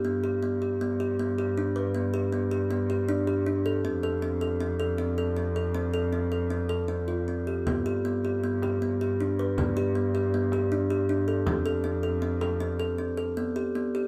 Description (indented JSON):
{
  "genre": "contemporary instrumental, chamber music in an uneven meter",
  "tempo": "158 BPM",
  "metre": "5/4",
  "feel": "straight",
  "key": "G mixolydian",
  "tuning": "A4 = 439 Hz",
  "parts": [
    { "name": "kalimba", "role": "arpeggios", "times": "0.0-14.1 s", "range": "B3 to B4", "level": "-29 LUFS", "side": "equal", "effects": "none" },
    { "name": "muted cello", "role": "bass", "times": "0.0-13.3 s", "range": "F2 to G2", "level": "-33 LUFS", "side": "equal", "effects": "none" },
    { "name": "frame drum", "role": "percussion", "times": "7.7-12.7 s", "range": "none", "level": "-35 LUFS", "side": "equal", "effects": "none" }
  ],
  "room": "moderate studio reverb, RT60 0.6 s",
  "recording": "heard from further back in the room",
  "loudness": "-28 LUFS",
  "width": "mono",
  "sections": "0.0-14.1 A section",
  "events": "none",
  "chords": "0.0 G; 3.8 F; 7.7 G; 11.5 F; 13.4 G",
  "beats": "| 0.04 0.42 0.81 1.19 1.57 | 1.95 2.33 2.71 3.09 3.47 | 3.85 4.22 4.60 4.98 5.37 | 5.74 6.12 6.50 6.89 7.28 | 7.66 8.04 8.43 8.81 9.19 | 9.57 9.95 10.33 10.71 11.09 | 11.47 11.84 12.22 12.60 12.99 | 13.37 13.75"
}